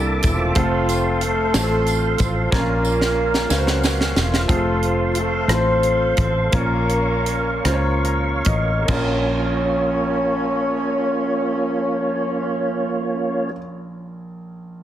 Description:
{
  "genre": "slow gospel",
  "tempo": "46-61 BPM (dotted quarters)",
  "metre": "6/8",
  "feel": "straight",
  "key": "Bb harmonic minor",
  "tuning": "A4 = 440 Hz",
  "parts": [
    { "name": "mellow horn section", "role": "melody", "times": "0.0-13.5 s", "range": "F3 to Db5", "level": "-23 LUFS", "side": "left 1 dB", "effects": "none" },
    { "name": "clear baby grand piano", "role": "accompaniment", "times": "0.0-14.8 s", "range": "Bb1 to Bb5", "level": "-25 LUFS", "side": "equal", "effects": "none" },
    { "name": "tonewheel organ", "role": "sustained chords", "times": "0.0-13.5 s", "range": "Bb3 to D6", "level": "-24 LUFS", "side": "right 3 dB", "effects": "slow rotary speaker, chorus vibrato" },
    { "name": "fingered electric bass", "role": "bass", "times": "0.0-13.5 s", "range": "E1 to Db2", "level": "-22 LUFS", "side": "equal", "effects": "none" },
    { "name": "tight funk drum kit", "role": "drums", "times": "0.2-9.1 s", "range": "crash cymbal, hi-hat, kick drum, rim click, snare drum", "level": "-23 LUFS", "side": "equal", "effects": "none" },
    { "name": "tambourine", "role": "percussion", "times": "0.2-4.5 s", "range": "none", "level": "-33 LUFS", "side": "right 7 dB", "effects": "none" }
  ],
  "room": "light reverb",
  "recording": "heavily compressed radio sound",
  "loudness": "-17 LUFS",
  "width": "side -11 dB against mid",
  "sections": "0.0-4.5 A section; 4.5-8.9 B section; 8.9-14.1 C section",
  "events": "drum fill 2.5-4.5; slowing down 4.5-8.9; grand piano fill 7.6-8.9",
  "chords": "0.0 C13; 0.6 F; 2.5 Bbm; 4.5 F; 6.5 Bbm"
}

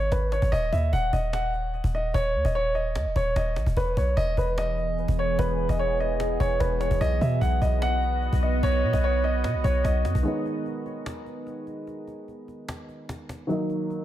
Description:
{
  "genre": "hip hop, trap",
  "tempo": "148 BPM",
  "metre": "4/4",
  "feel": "half-time",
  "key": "G# minor",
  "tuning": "A4 = 440 Hz",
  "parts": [
    { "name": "dark grand piano", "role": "melody", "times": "0.0-10.0 s", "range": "B4 to F#5", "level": "-27 LUFS", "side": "right 1 dB", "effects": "low-pass filter, analog delay" },
    { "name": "warm 808-style bass", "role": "bass", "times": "0.0-10.2 s", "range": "D#1 to B2", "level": "-25 LUFS", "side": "equal", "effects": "none" },
    { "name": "cajon", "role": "drums", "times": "0.1-14.0 s", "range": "none", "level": "-33 LUFS", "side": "equal", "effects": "none" },
    { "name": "deep dark ambient pad", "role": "sustained chords", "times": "4.5-10.2 s", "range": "E3 to D#5", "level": "-32 LUFS", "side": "right 1 dB", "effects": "chorus, built-in reverb" },
    { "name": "felt-muted upright piano", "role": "accompaniment", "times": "10.2-14.0 s", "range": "D#3 to D#4", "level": "-31 LUFS", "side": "equal", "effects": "low-pass filter" }
  ],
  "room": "moderate plate reverb, RT60 1.5 s, small room ambience",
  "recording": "dreamy mix soaked in reverb",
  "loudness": "-23 LUFS",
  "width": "side -12 dB against mid",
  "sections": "0.0-10.3 A section; 10.3-14.0 B section",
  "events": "break 10.3-14.0; filter sweep 10.3-14.0",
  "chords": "0.0 G#5; 0.5 D#m; 3.8 E; 7.0 B; 10.3 G#m; 13.5 D#m"
}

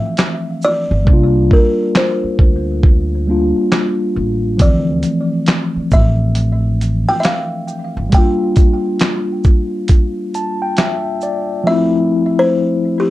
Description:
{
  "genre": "lo-fi hip hop",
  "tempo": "68 BPM",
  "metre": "4/4",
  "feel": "swing 63% on 16ths",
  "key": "D minor",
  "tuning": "A4 = 440 Hz",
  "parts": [
    { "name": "buzzing kalimba", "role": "melody", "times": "0.0-13.1 s", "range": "G4 to G5", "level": "-20 LUFS", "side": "equal", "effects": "tape echo" },
    { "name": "mellow tine electric piano", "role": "accompaniment", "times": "0.0-13.1 s", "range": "E3 to A5", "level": "-17 LUFS", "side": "left 1 dB", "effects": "medium stereo tremolo, cassette tape" },
    { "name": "dusty soul sampler-style drum kit", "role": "drums", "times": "0.2-11.5 s", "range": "handclaps, hi-hat, kick drum, shaker, snare drum", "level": "-12 LUFS", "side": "equal", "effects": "vintage 12-bit sampler grit" },
    { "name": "upright bass", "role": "bass", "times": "0.9-8.1 s", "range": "G1 to D2", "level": "-17 LUFS", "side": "equal", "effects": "none" }
  ],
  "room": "light reverb",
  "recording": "dark, warm production",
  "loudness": "-12 LUFS",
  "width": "side -16 dB against mid",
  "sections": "0.0-13.1 A section",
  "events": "hi-hats muted 1.1-4.6",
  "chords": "0.0 Dm9; 1.1 C9sus4; 4.6 Dm9; 8.1 Gm13; 11.7 Fmaj7"
}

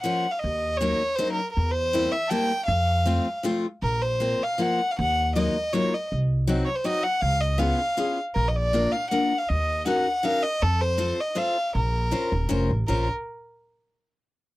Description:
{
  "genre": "musette waltz",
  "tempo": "159 BPM",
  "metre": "3/4",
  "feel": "straight",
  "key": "Bb harmonic minor",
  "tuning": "A4 = 439 Hz",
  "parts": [
    { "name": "rich violin", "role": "melody", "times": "0.0-13.1 s", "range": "A4 to A5", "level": "-25 LUFS", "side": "equal", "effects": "none" },
    { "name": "picked steel-string acoustic guitar", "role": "accompaniment", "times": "0.0-13.1 s", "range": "F3 to C5", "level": "-26 LUFS", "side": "left 2 dB", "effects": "none" },
    { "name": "upright bass", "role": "bass", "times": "0.4-13.1 s", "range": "Eb1 to F2", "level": "-25 LUFS", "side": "equal", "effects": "none" }
  ],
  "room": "light reverb",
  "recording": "dry, close 1970s-style studio recording",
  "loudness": "-22 LUFS",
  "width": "side -18 dB against mid",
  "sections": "0.0-12.9 A section; 12.9-14.0 B section",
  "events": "none",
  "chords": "0.4 Ebm7; 1.6 C7/E; 2.7 F; 3.8 Bbsus2; 5.0 Ebmadd9; 6.1 Cdim; 7.2 Db7; 8.4 Bb; 9.5 Ebm7; 10.6 F; 11.7 Bbmadd9"
}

